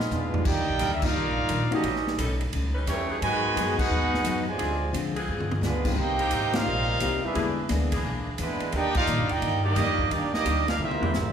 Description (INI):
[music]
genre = jazz, big band swing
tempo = 174 BPM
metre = 4/4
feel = swing 65% on 8ths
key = Eb major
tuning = A4 = 441 Hz
[part]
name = dark trombone section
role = second line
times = 0.0-11.3 s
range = Cb3 to G4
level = -32 LUFS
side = right 3 dB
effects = none
[part]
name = upright bass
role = bass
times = 0.0-11.3 s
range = G1 to Cb3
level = -30 LUFS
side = equal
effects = none
[part]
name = swinging big-band drum kit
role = drums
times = 0.0-11.2 s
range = crash cymbal, hi-hat, kick drum, ride cymbal, snare drum, toms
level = -31 LUFS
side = equal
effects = none
[part]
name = warm trumpet section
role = melody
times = 0.1-11.3 s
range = G#3 to Ab5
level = -28 LUFS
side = right 2 dB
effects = none
[part]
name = picked steel-string acoustic guitar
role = accompaniment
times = 0.1-11.3 s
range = Ab2 to Ab4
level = -35 LUFS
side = left 4 dB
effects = none
[part]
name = dark concert grand piano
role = accompaniment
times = 0.3-11.1 s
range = D3 to Ab4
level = -33 LUFS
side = left 6 dB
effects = none
[part]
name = bright saxophone section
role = sustained chords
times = 0.8-11.1 s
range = Eb3 to D5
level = -37 LUFS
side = left 1 dB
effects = none
[sound]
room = wet recital hall reverb, RT60 1.5 s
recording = recorded in a church or concert hall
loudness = -23 LUFS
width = side -8 dB against mid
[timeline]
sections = 0.5-11.3 A section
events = drum fill 0.0-0.5, 5.3-5.6, 10.8-11.1; band accent 1.0, 3.7, 6.5, 8.9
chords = 0.5 Ebmaj7; 1.8 A7#11; 3.2 Abm7; 4.6 Dm7b5; 5.3 G7b9; 6.0 Cm7; 7.3 E7#11; 8.7 Ebmaj7; 10.8 C7b13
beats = 0.11 | 0.45 0.80 1.14 1.49 | 1.83 2.18 2.52 2.87 | 3.21 3.56 3.90 4.25 | 4.59 4.93 5.28 5.62 | 5.97 6.31 6.66 7.00 | 7.35 7.69 8.04 8.38 | 8.73 9.07 9.42 9.77 | 10.11 10.46 10.80 11.15